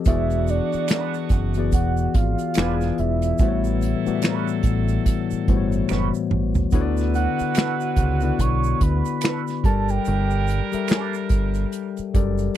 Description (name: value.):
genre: R&B, neo-soul.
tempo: 72 BPM.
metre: 4/4.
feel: swing 59% on 16ths.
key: unclear.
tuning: A4 = 440 Hz.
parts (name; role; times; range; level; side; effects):
tine electric piano; accompaniment; 0.0-12.6 s; A2 to E5; -24 LUFS; left 8 dB; none.
soft octave-layered synth lead; melody; 0.1-11.1 s; D5 to C#6; -28 LUFS; right 6 dB; chorus, tremolo, tape echo.
bright saxophone section; stabs; 0.1-12.1 s; D3 to B4; -34 LUFS; right 12 dB; none.
deep dub fingered electric bass; bass; 0.1-12.5 s; E1 to D2; -23 LUFS; right 1 dB; none.
unplugged drum kit; drums; 0.1-12.6 s; finger snaps, hi-hat, kick drum, snare drum, toms; -21 LUFS; right 1 dB; none.
egg shaker and finger snaps; percussion; 0.1-12.5 s; none; -38 LUFS; right 24 dB; none.
electric guitar through a small old amp; second line; 0.9-11.1 s; G3 to B4; -30 LUFS; right 12 dB; wah.
room: little or no reverb.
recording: dry, close 1970s-style studio recording.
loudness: -19 LUFS.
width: side -12 dB against mid.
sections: 0.0-12.6 A section.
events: drum fill 5.9-6.7.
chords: 0.1 E9; 2.6 E7b9; 3.4 A13; 6.7 D69; 9.6 Gmadd9.